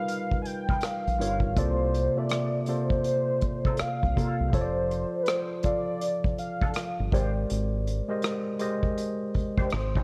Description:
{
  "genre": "R&B, neo-soul",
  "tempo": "81 BPM",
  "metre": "4/4",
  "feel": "swing 62% on 16ths",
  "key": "unclear",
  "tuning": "A4 = 440 Hz",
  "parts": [
    { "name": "warm velvety synth lead", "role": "melody", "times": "0.0-10.0 s", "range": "B4 to Ab5", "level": "-32 LUFS", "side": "equal", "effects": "chorus" },
    { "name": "barky tine electric piano", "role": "accompaniment", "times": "0.0-9.7 s", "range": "C3 to F5", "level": "-33 LUFS", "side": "equal", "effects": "overdrive" },
    { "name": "unplugged drum kit", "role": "drums", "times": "0.1-10.0 s", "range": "hi-hat, kick drum, rim click", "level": "-31 LUFS", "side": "equal", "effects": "none" },
    { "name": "electric guitar through a small old amp", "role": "second line", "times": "0.7-9.7 s", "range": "Bb3 to C5", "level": "-39 LUFS", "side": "equal", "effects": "wah" },
    { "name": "deep dub fingered electric bass", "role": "bass", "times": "1.1-10.0 s", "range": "F1 to C2", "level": "-31 LUFS", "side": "equal", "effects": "transformer saturation" }
  ],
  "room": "light reverb, small room ambience",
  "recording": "worn, warbling old tape, cassette tape, warbly pitch drift",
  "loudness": "-28 LUFS",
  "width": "mono",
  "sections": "0.0-10.0 A section",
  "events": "none",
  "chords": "0.0 G7alt; 1.6 C13sus4; 4.5 F6; 7.1 Abmaj9#11",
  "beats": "0.09 0.83 | 1.57 2.31 3.05 3.79 | 4.53 5.27 6.01 6.75 | 7.50 8.24 8.98 9.72"
}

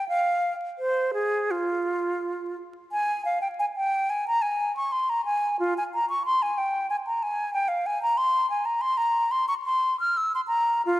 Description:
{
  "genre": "classical, baroque-style fantasia for unaccompanied flute",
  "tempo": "84-94 BPM",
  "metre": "4/4",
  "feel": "rubato",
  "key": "F minor",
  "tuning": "A4 = 438 Hz",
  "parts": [
    { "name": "bright wooden flute", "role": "solo", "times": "0.0-11.0 s", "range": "F4 to F6", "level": "-23 LUFS", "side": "equal", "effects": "none" }
  ],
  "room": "moderate scoring stage reverb, RT60 2.1 s",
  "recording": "vinyl crackle",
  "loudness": "-23 LUFS",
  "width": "side -16 dB against mid",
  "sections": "0.0-2.9 A section; 2.9-11.0 A section",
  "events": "none",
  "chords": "none",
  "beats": "| 0.09 0.79 1.49 2.20 | 2.90 3.57 4.24 4.90 | 5.56 6.22 6.87 7.53 | 8.18 8.83 9.48 10.14 | 10.83"
}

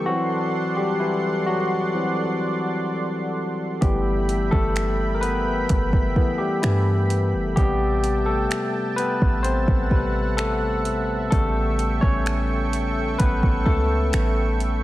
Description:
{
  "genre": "contemporary R&B",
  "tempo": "64 BPM",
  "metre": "4/4",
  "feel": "straight",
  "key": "unclear",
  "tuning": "A4 = 440 Hz",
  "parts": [
    { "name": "barky tine electric piano", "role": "accompaniment", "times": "0.0-14.8 s", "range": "C3 to C#5", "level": "-23 LUFS", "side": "left 2 dB", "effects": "none" },
    { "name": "lush unison pad", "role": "sustained chords", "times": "0.0-14.8 s", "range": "A4 to C#6", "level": "-30 LUFS", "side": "right 3 dB", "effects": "chorus" },
    { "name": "warm 808-style bass", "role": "bass", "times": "3.8-14.8 s", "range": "F#1 to G2", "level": "-24 LUFS", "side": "equal", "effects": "none" },
    { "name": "smooth R&B drum kit", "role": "drums", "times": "3.8-14.8 s", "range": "finger snaps, hi-hat, kick drum", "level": "-23 LUFS", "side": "equal", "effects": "none" }
  ],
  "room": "digital ambience",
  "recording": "none",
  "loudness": "-20 LUFS",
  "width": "side -15 dB against mid",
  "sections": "0.0-14.8 A section",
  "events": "tine electric piano solo 0.0-14.8",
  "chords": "0.1 D7; 3.8 G69; 7.6 Am7; 11.3 A7",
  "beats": "| 0.07 1.01 1.95 2.88 | 3.82 4.76 5.70 6.63 | 7.57 8.51 9.45 10.38 | 11.32 12.26 13.20 14.13"
}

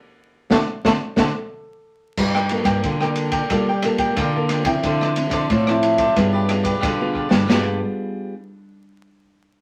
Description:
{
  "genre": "samba and choro",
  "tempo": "90 BPM",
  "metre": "4/4",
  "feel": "straight",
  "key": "G minor",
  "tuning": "A4 = 444 Hz",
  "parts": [
    { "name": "breathy trombone", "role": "melody", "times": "0.5-1.3 s", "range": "A3", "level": "-24 LUFS", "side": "equal", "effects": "none" },
    { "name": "cavaquinho", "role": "accompaniment", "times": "0.5-7.8 s", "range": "F4 to G5", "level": "-27 LUFS", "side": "equal", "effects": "none" },
    { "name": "nylon-string guitar", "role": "accompaniment", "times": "0.5-8.3 s", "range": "A2 to A4", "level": "-25 LUFS", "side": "equal", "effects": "none" },
    { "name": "nylon-string guitar", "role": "bass", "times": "0.5-7.8 s", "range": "G2 to G3", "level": "-25 LUFS", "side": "equal", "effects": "none" },
    { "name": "open jazz drum kit", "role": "drums", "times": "0.5-7.7 s", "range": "china cymbal, crash cymbal, kick drum, ride cymbal, rim click, snare drum", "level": "-26 LUFS", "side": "equal", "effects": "none" }
  ],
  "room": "moderate studio reverb, RT60 0.6 s",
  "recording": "vinyl crackle",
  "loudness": "-20 LUFS",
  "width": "mono",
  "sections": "0.0-2.2 A section; 2.2-7.5 B section; 7.5-9.6 C section",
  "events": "band accent 0.0-2.2; drum fill 7.2-7.5",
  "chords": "0.0 D7; 2.2 Gm9; 4.8 Dm9; 6.2 G7b9",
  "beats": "0.19 0.85 1.52 | 2.18 2.85 3.51 4.18 | 4.84 5.50 6.17 6.83 | 7.50 8.16"
}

